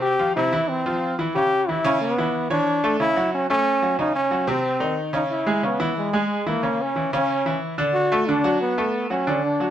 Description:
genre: latin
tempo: 182 BPM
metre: 4/4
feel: straight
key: unclear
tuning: A4 = 436 Hz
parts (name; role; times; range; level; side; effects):
- bright trombone; melody; 0.0-9.7 s; G#3 to G4; -22 LUFS; equal; none
- bright concert grand piano; accompaniment; 0.0-9.7 s; C3 to C#5; -23 LUFS; equal; none
room: moderate studio reverb, RT60 0.8 s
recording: none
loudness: -20 LUFS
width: side -10 dB against mid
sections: 0.0-9.7 A section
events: none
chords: 0.0 Fsus2; 1.3 C#m7b5; 2.7 Dmaj9; 4.0 D#m7; 4.6 Cm; 5.3 C#m7; 6.6 C#m; 7.9 Bm7

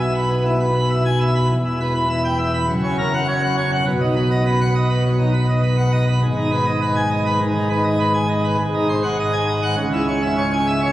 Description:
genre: classical, organ toccata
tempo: 101 BPM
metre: 4/4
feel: straight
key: B major, G# minor from 6.2 s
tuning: A4 = 442 Hz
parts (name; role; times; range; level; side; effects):
- pipe organ, plenum; solo; 0.0-10.9 s; E1 to B5; -16 LUFS; equal; none
room: wet cathedral reverb, RT60 6.6 s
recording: recorded on a phone in the room, club reverb, compression, nothing above 10.9 kHz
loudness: -16 LUFS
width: side -14 dB against mid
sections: 0.0-10.9 A section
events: none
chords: 0.0 E/B; 1.5 Em; 2.7 F#; 3.9 B; 6.2 G#m; 8.6 G#7; 9.8 C#m

